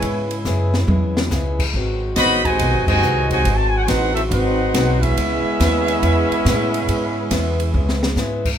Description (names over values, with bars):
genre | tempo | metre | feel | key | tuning
jazz, big band swing | 140 BPM | 4/4 | swing 66% on 8ths | C# minor | A4 = 440 Hz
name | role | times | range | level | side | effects
clear trumpet section | melody | 0.0-8.2 s | B#3 to B5 | -20 LUFS | equal | none
warm trombone section | second line | 0.0-8.2 s | B2 to F#4 | -24 LUFS | right 2 dB | none
picked old ladder-braced acoustic guitar | accompaniment | 0.0-8.5 s | G#2 to G#4 | -27 LUFS | left 4 dB | none
clear trombone section | sustained chords | 0.0-8.6 s | C#3 to F#4 | -28 LUFS | equal | none
upright bass | bass | 0.0-8.6 s | F#1 to A2 | -20 LUFS | equal | none
open jazz drum kit | drums | 0.0-8.5 s | crash cymbal, hi-hat, kick drum, ride cymbal, snare drum, toms | -24 LUFS | equal | none
room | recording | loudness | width
moderate large studio reverb, RT60 0.9 s | minimal, uncompressed stereo recording | -16 LUFS | side -9 dB against mid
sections
0.0-8.6 A section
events
drum fill 0.5-1.3, 7.7-8.2; band accent 2.8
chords
0.0 C#m7; 1.7 G#7#9; 5.2 C#m7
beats
| 0.03 0.46 0.88 1.31 | 1.74 2.17 2.60 3.03 | 3.46 3.88 4.31 4.74 | 5.17 5.60 6.03 6.46 | 6.89 7.32 7.74 8.17